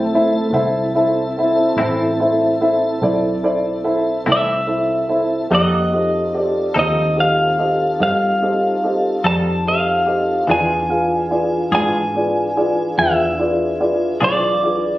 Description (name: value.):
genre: slow blues.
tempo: 48 BPM (dotted quarters).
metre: 12/8.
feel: straight.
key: A minor.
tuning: A4 = 442 Hz.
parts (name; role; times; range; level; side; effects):
dark upright piano; accompaniment; 0.0-14.9 s; E4 to F5; -18 LUFS; equal; none.
mellow tonewheel organ; sustained chords; 0.0-15.0 s; E3 to F#5; -24 LUFS; left 1 dB; slow rotary speaker.
vintage muted fingered electric bass; bass; 0.0-15.0 s; A1 to G#2; -25 LUFS; equal; none.
semi-hollow electric guitar; accompaniment; 1.8-14.5 s; A2 to A4; -23 LUFS; left 2 dB; tremolo.
clean electric guitar; melody; 4.3-15.0 s; D5 to A5; -19 LUFS; equal; spring reverb.
room: light reverb.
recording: recorded on a phone in the room, club reverb.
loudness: -15 LUFS.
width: side -16 dB against mid.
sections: 0.0-15.0 A section.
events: none.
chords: 0.0 Am; 5.5 F7; 10.5 E7b9.